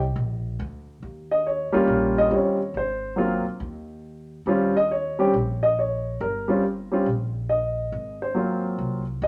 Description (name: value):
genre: jazz piano trio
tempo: 139 BPM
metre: 4/4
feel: swing 65% on 8ths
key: Eb mixolydian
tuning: A4 = 439 Hz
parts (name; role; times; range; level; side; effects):
- upright bass; bass; 0.0-9.3 s; G1 to Eb2; -33 LUFS; equal; none
- warm grand piano; melody; 1.3-9.3 s; Gb3 to Eb5; -24 LUFS; equal; none
room: moderate studio reverb, RT60 0.8 s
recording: none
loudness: -24 LUFS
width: mono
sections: 0.0-1.0 A section; 1.0-9.3 B section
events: none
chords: 0.2 Bb; 1.0 Eb9; 2.7 Ab; 4.5 Eb7; 7.9 Ab13